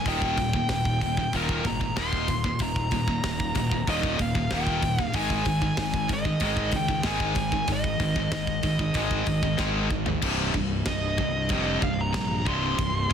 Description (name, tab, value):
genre	heavy metal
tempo	94 BPM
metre	4/4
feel	straight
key	C minor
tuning	A4 = 439 Hz
part	high-gain lead guitar	melody	0.0-13.1 s	Bb4 to C6	-30 LUFS	equal	distortion, digital delay
part	heavy high-gain guitar	riff	0.0-13.1 s	C2 to Ab3	-31 LUFS	right 12 dB	distortion
part	high-gain distorted guitar	riff	0.0-13.1 s	C2 to Ab3	-30 LUFS	left 9 dB	distortion
part	fuzz fingered electric bass	bass	0.1-13.1 s	C1 to Db2	-31 LUFS	equal	overdrive
part	tight metal drum kit	drums	0.1-13.1 s	china cymbal, crash cymbal, hi-hat, kick drum, snare drum, toms	-30 LUFS	equal	none
room	light reverb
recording	dense, heavily limited modern master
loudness	-23 LUFS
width	side -8 dB against mid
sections	0.0-10.2 A section; 10.2-13.1 B section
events	drum fill 9.6-10.2; lead electric guitar solo 10.2-13.1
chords	0.1 Eb; 5.1 Ab5; 10.2 Cm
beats	| 0.06 0.70 1.33 1.97 | 2.60 3.24 3.87 4.51 | 5.14 5.78 6.41 7.05 | 7.69 8.32 8.96 9.60 | 10.23 10.87 11.51 12.15 | 12.79